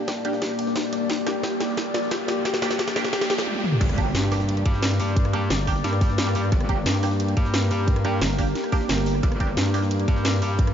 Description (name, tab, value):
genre	dark technical drum and bass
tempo	177 BPM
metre	4/4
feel	straight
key	G minor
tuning	A4 = 440 Hz
part	deep dark ambient pad	sustained chords	0.0-10.7 s	Bb3 to D5	-28 LUFS	left 2 dB	chorus, built-in reverb, sidechain pumping
part	analog pluck	arpeggios	0.0-3.4 s	G4 to G5	-32 LUFS	left 3 dB	chorus, sidechain pumping, analog delay
part	band-passed chord stab	stabs	0.0-9.8 s	Bb3 to G4	-32 LUFS	right 4 dB	phaser, analog chorus, analog delay
part	riser and impact	sound effects	0.0-5.2 s	none	-36 LUFS	right 1 dB	none
part	drum and bass drum kit	drums	0.1-10.7 s	crash cymbal, hi-hat, rim click, snare drum, toms	-28 LUFS	equal	overdrive, studio reverb
part	electronic kick drum	drums	0.1-10.7 s	none	-23 LUFS	equal	high-pass filter on kick, studio reverb, high-pass filter on room
part	jungle sampler-style drum kit	drums	0.1-10.7 s	hi-hat, ride cymbal, snare drum	-37 LUFS	equal	none
part	metallic wobble bass	bass	3.8-10.7 s	G1 to G2	-24 LUFS	equal	distortion, chorus, overdrive, sidechain pumping
part	growling FM bass	bass	4.1-10.1 s	G1 to G2	-23 LUFS	equal	none
room	moderate huge ambient reverb, RT60 8.7 s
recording	dreamy mix soaked in reverb, nothing above 7.5 kHz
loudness	-20 LUFS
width	side -9 dB against mid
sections	0.0-3.8 A section; 3.8-10.7 B section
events	build-up 0.0-3.8; drum fill 0.0-3.5, 3.5-3.8; riser 0.0-3.5; filter sweep on synth arpeggio sound 0.0-3.8; drop 3.8-10.7; impact 3.8-5.2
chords	0.0 Gm